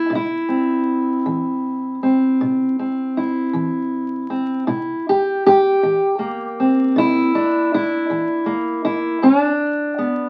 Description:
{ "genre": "acoustic country blues, solo or duo", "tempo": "53 BPM (dotted quarters)", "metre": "12/8", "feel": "straight", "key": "unclear", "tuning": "A4 = 440 Hz", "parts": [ { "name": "fingerpicked steel-string acoustic guitar", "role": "solo", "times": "0.0-10.3 s", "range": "G2 to G4", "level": "-19 LUFS", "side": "equal", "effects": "none" } ], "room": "wet studio reverb, RT60 0.6 s", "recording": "very old 78 rpm record, vinyl crackle", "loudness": "-19 LUFS", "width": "mono", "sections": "0.0-10.3 A section", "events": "none", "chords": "0.0 C7; 9.2 G", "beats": "| 0.12 1.26 2.40 3.54 | 4.68 5.82 6.95 8.09 | 9.23" }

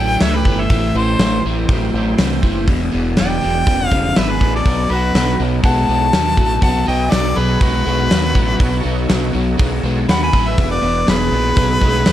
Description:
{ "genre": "blues rock power trio and southern rock", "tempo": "122 BPM", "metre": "4/4", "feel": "straight", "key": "unclear", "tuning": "A4 = 443 Hz", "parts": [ { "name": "bright harmonica", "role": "melody", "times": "0.0-12.1 s", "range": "B4 to B5", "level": "-20 LUFS", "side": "left 2 dB", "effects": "overdrive" }, { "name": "lightly driven lead guitar", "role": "second line", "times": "0.0-12.1 s", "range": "F#4 to G#5", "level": "-27 LUFS", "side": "right 3 dB", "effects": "none" }, { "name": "overdriven tonewheel organ", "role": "sustained chords", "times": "0.0-12.1 s", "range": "F#3 to C#5", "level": "-31 LUFS", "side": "right 4 dB", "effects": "none" }, { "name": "crunchy overdriven guitar", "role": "riff", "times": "0.0-12.1 s", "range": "E2 to G#3", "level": "-20 LUFS", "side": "left 1 dB", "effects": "spring reverb" }, { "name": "growling fingered electric bass", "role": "bass", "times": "0.0-12.1 s", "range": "E1 to D#2", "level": "-20 LUFS", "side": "equal", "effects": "overdrive" }, { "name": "big rock drum kit", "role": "drums", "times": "0.2-12.1 s", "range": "hi-hat, kick drum, snare drum", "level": "-18 LUFS", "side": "equal", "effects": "none" } ], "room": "light reverb, small room ambience", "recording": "none", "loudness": "-13 LUFS", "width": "side -12 dB against mid", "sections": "0.0-12.1 A section", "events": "none", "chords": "0.0 A7; 0.7 Am7; 2.7 E7; 4.7 B7; 10.6 E7; 11.6 B7", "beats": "0.21 | 0.70 1.20 1.69 2.19 | 2.68 3.17 3.67 4.16 | 4.66 5.15 5.64 6.14 | 6.63 7.12 7.62 8.11 | 8.61 9.10 9.59 10.09 | 10.58 11.08 11.57 12.06" }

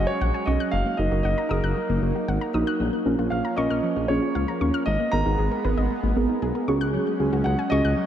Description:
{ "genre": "pop", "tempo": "116 BPM", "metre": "4/4", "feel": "straight", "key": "unclear", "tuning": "A4 = 441 Hz", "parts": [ { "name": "dark grand piano", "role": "melody", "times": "0.0-8.1 s", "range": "A#4 to A#5", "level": "-29 LUFS", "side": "right 2 dB", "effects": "tape echo" }, { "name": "muted felt-like synth keys", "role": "accompaniment", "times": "0.0-7.9 s", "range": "B3 to A#4", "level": "-27 LUFS", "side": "right 2 dB", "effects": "chorus" }, { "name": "lush unison pad", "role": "sustained chords", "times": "0.0-8.1 s", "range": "E#3 to D#4", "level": "-30 LUFS", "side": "equal", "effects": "chorus" }, { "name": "soft round pluck", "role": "arpeggios", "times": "0.0-8.1 s", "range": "E#3 to F#6", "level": "-31 LUFS", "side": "left 4 dB", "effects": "chorus, tape echo" }, { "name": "smooth synth bass", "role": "bass", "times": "0.0-7.9 s", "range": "F#1 to D#2", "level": "-25 LUFS", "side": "equal", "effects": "none" } ], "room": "moderate lush hall reverb, RT60 2.6 s", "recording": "dark, warm production", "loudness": "-21 LUFS", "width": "side -10 dB against mid", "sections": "0.0-2.8 A section; 2.8-8.1 B section", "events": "none", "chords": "0.0 C#sus4; 0.7 D#m/F#; 2.8 A#m; 4.9 G#madd9; 6.7 C#sus4", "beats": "0.21 | 0.73 1.25 1.77 2.28 | 2.80 3.32 3.83 4.35 | 4.87 5.39 5.90 6.42 | 6.94 7.46 7.97" }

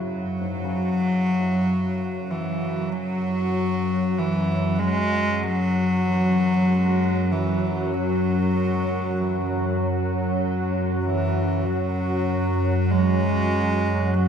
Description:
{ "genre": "dark ambient drone", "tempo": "free time", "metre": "none", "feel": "none", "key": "unclear", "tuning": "A4 = 439 Hz", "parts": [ { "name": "deep dark ambient pad", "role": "sustained chords", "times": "0.0-14.3 s", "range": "C#4 to C#5", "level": "-31 LUFS", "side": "right 1 dB", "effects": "chorus, built-in reverb" }, { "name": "warm concert grand piano", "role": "arpeggios", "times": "0.0-14.3 s", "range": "G#2 to E4", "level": "-40 LUFS", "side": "left 4 dB", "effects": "tape echo" }, { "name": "organ-like drone", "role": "drone", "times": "0.0-14.3 s", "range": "F#2 to F#3", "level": "-24 LUFS", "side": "right 1 dB", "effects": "ensemble chorus, built-in reverb" }, { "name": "clear cello", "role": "melody", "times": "0.4-14.3 s", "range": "E3 to G#3", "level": "-24 LUFS", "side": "left 1 dB", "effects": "tape echo" } ], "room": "moderate spring reverb, RT60 2.2 s", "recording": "echo-heavy mix", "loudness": "-21 LUFS", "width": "side -7 dB against mid", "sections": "0.0-14.3 A section", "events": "fade-in on ambient pad 0.0-14.3", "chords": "0.0 F#5", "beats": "free time" }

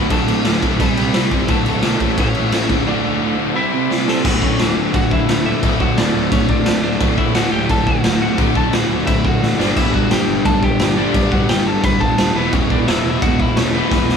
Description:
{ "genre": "punk rock", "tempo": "174 BPM", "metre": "4/4", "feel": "straight", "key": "D major", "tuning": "A4 = 441 Hz", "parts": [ { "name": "lightly driven lead guitar", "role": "melody", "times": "0.0-14.2 s", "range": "G3 to B5", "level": "-23 LUFS", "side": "left 1 dB", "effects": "none" }, { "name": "biting overdriven guitar", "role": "riff", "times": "0.0-14.2 s", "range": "D2 to C5", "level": "-24 LUFS", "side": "equal", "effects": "none" }, { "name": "overdriven electric guitar", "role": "riff", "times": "0.0-14.2 s", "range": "D2 to C4", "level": "-23 LUFS", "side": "right 11 dB", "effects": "none" }, { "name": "overdriven semi-hollow guitar", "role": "riff", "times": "0.0-14.2 s", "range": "D2 to C4", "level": "-21 LUFS", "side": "left 9 dB", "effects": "none" }, { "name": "fuzz picked electric bass", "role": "bass", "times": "0.0-14.2 s", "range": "D1 to A2", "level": "-24 LUFS", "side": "equal", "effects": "overdrive" }, { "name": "raw garage drum kit", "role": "drums", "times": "0.1-14.2 s", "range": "crash cymbal, kick drum, snare drum, splash cymbal", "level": "-18 LUFS", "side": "equal", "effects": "none" } ], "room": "light reverb", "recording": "band playing live in one room", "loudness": "-14 LUFS", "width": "side -6 dB against mid", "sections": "0.0-4.2 A section; 4.2-14.2 B section", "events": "drum fill 3.9-4.2, 9.4-9.8, 13.9", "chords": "0.0 D; 0.8 C; 1.5 D; 2.0 A; 2.7 D; 3.6 C; 4.2 D; 9.6 G; 12.4 E", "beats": "| 0.10 0.45 0.79 1.14 | 1.49 1.83 2.18 2.52 | 2.87 3.21 3.56 3.90 | 4.25 4.59 4.93 5.28 | 5.62 5.97 6.31 6.66 | 7.00 7.35 7.69 8.04 | 8.38 8.73 9.07 9.42 | 9.76 10.11 10.45 10.80 | 11.14 11.49 11.84 12.18 | 12.53 12.87 13.22 13.56 | 13.91" }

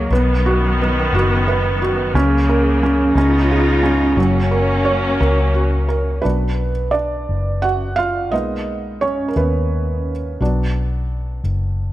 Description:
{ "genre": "pop", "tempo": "58 BPM (dotted quarters)", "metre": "6/8", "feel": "straight", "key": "unclear", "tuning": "A4 = 441 Hz", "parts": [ { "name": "felt-muted upright piano", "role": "accompaniment", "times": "0.0-11.9 s", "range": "F#3 to F#5", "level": "-19 LUFS", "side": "right 2 dB", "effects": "none" }, { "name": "warm studio string section", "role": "sustained chords", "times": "0.0-6.2 s", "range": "C#3 to E#4", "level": "-20 LUFS", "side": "left 1 dB", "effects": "none" }, { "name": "vintage muted fingered electric bass", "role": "bass", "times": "0.0-11.9 s", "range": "F#1 to D#2", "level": "-19 LUFS", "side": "left 1 dB", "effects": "none" } ], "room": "light reverb, small room reverb", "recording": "none", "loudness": "-15 LUFS", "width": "side -14 dB against mid", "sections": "0.0-6.2 A section; 6.2-11.9 B section", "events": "felt piano solo 6.2-11.9", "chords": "0.1 B; 2.1 F#/C#; 3.2 C#7; 4.2 F#; 6.2 Bm; 8.3 G#madd9/B; 10.4 Bm", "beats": "| 0.11 1.13 | 2.15 3.16 | 4.18 5.21 | 6.25 7.29 | 8.33 9.37 | 10.40 11.44" }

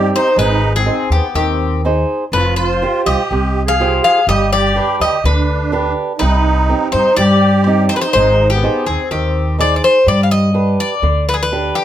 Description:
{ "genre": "greek folk, Greek bouzouki band", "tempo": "124 BPM", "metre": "4/4", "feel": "straight", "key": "G phrygian dominant", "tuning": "A4 = 440 Hz", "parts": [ { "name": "Greek bouzouki", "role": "melody", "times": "0.0-11.8 s", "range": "G4 to F5", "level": "-16 LUFS", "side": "left 2 dB", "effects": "none" }, { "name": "musette accordion", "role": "second line", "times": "0.0-9.6 s", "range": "B3 to Ab4", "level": "-20 LUFS", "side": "right 3 dB", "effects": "slapback echo" }, { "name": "fingerpicked swing-style acoustic guitar", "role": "accompaniment", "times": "0.0-11.8 s", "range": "C3 to C5", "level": "-20 LUFS", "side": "right 3 dB", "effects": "none" }, { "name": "upright bass", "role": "bass", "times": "0.0-11.7 s", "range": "F1 to G2", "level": "-16 LUFS", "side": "equal", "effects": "none" } ], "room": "moderate studio reverb, RT60 0.5 s", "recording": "close, detailed microphones", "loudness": "-12 LUFS", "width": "side -11 dB against mid", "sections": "0.0-10.1 A section; 10.1-11.8 B section", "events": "none", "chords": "0.4 Ab; 2.3 Fsus2; 4.3 G; 6.2 Cm; 8.1 Ab; 10.1 G", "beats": "| 0.37 0.86 1.35 1.84 | 2.33 2.81 3.30 3.78 | 4.27 4.75 5.24 5.72 | 6.21 6.69 7.18 7.66 | 8.14 8.62 9.11 9.59 | 10.07 10.55 11.03 11.51" }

